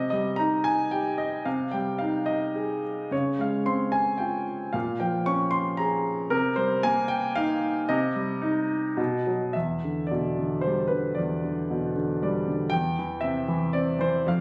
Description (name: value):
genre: classical, lyrical solo piano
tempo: 106-120 BPM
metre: 3/4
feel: rubato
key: unclear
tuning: A4 = 440 Hz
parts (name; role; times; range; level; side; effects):
- warm grand piano; solo; 0.0-14.4 s; E2 to Db6; -27 LUFS; equal; none
room: moderate recital hall reverb, RT60 1.4 s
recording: recorded on a phone in the room, studio reverb, compression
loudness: -27 LUFS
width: mono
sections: 0.0-9.6 A section; 9.6-14.4 B section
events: grand piano fill 12.0-12.7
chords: 0.0 Cm; 1.5 Cmadd11; 3.1 Dbmaj7; 4.7 Bbm7; 6.3 Cm7; 7.9 Cm; 9.0 B; 9.6 Em7; 12.7 Cadd9/E